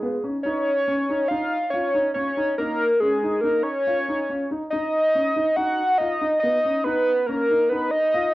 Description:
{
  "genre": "progressive instrumental, progressive",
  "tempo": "140 BPM",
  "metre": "5/4",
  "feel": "straight",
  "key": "Bb phrygian",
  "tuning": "A4 = 441 Hz",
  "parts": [
    { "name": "hollow square lead", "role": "melody", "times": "0.0-8.3 s", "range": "Ab4 to F#5", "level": "-21 LUFS", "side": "equal", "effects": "chorus" },
    { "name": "dark concert grand piano", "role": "arpeggios", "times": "0.0-8.3 s", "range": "Cb4 to F4", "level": "-28 LUFS", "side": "equal", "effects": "digital delay" }
  ],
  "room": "wet studio reverb, RT60 0.5 s",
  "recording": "worn, warbling old tape, cassette tape, warbly pitch drift",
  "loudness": "-20 LUFS",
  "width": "side -17 dB against mid",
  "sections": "0.0-8.3 A section",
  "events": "none",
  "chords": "0.5 Bbm; 4.7 Bmaj7"
}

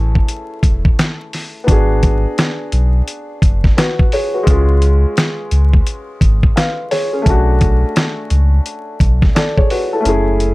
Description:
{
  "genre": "hip hop, boom-bap hip-hop",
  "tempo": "86 BPM",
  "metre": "4/4",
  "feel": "swing 63% on 16ths",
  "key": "unclear",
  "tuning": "A4 = 440 Hz",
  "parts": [
    { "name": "dark upright piano", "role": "accompaniment", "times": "0.0-10.5 s", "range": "G#3 to E#5", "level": "-19 LUFS", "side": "left 1 dB", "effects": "cassette tape, high-pass filter, low-pass filter" },
    { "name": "sub bass with octave", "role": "bass", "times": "0.0-10.5 s", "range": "E1 to C#2", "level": "-13 LUFS", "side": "equal", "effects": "none" },
    { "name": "dusty soul sampler-style drum kit", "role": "drums", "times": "0.2-10.5 s", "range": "hi-hat, kick drum, snare drum", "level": "-13 LUFS", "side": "equal", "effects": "none" }
  ],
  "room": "little or no reverb",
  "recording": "dark, warm production, vinyl crackle",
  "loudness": "-12 LUFS",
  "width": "side -21 dB against mid",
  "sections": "0.0-10.5 A section",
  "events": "kick muted 10.1-10.5",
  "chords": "0.0 F#m7; 1.7 G#m7b5; 4.5 C#; 7.3 Bm7"
}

